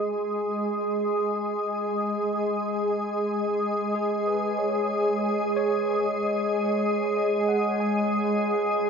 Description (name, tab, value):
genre	ambient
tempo	56 BPM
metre	4/4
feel	straight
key	G# minor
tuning	A4 = 440 Hz
part	overdriven tine electric piano	arpeggios	0.0-8.9 s	G#4 to G#5	-32 LUFS	left 2 dB	fast tremolo, analog delay, shimmer reverb
part	organ-like drone	drone	0.0-8.9 s	G#3 to G#4	-24 LUFS	equal	ensemble chorus, built-in reverb
room	wet huge ambient reverb, RT60 9.4 s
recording	dreamy mix soaked in reverb, faint mains hum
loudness	-23 LUFS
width	side -6 dB against mid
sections	0.0-8.9 A section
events	fade-in on tine electric piano 0.0-8.9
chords	0.0 G#m7